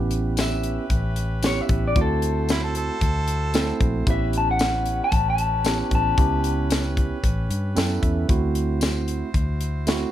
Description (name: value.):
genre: straight-eighth soul blues.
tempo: 114 BPM.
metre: 4/4.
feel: straight.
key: A mixolydian.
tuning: A4 = 440 Hz.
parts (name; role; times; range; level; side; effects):
bright tine electric piano; accompaniment; 0.0-10.1 s; A3 to G5; -27 LUFS; right 5 dB; plate reverb.
brilliant horn section; sustained chords; 0.0-10.1 s; C#4 to C5; -36 LUFS; right 1 dB; plate reverb.
vintage muted fingered electric bass; bass; 0.0-10.0 s; A1 to G2; -25 LUFS; equal; none.
tight funk drum kit; drums; 0.1-10.0 s; hi-hat, kick drum, snare drum, tambourine; -24 LUFS; left 1 dB; none.
electric guitar through a small old amp; melody; 0.4-7.5 s; A4 to A5; -25 LUFS; left 4 dB; plate reverb.
clear harmonica; second line; 2.5-3.8 s; E4 to A4; -29 LUFS; right 3 dB; overdrive, plate reverb.
room: light reverb.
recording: none.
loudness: -20 LUFS.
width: side -12 dB against mid.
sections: 0.0-10.1 A section.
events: tine electric piano fill 7.5-8.3.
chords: 0.0 A9; 2.0 D9; 4.1 A9; 8.3 D9.